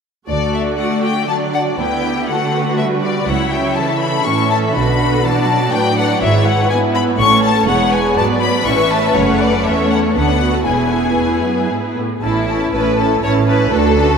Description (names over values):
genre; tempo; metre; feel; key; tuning
quick classical-period movement for string orchestra; 121 BPM; 3/4; rubato; D major, A major from 6.2 s; A4 = 440 Hz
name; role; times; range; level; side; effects
rich studio violin section; melody; 0.3-14.2 s; C#5 to C#6; -19 LUFS; left 5 dB; none
clear symphonic violin section; second line; 0.3-14.2 s; E4 to F#5; -20 LUFS; left 2 dB; none
rich symphonic viola section; accompaniment; 0.3-14.2 s; D3 to F#4; -18 LUFS; right 1 dB; none
clear symphonic cello section; bass; 0.3-14.2 s; D2 to D3; -22 LUFS; right 4 dB; none
clear symphonic double bass section; bass; 0.3-14.2 s; E1 to D2; -21 LUFS; right 4 dB; none
room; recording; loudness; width
wet cathedral reverb, RT60 6.3 s; in a vast, echoing space; -13 LUFS; side -6 dB against mid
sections
0.3-12.2 A section; 12.2-14.2 B section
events
none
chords
0.3 D; 1.8 Em7/D; 3.3 A/C#; 4.8 Bm; 6.2 E/G#; 7.2 A; 7.7 E7; 8.7 A; 9.2 F#m; 10.2 Bm7/D; 10.7 E; 12.2 A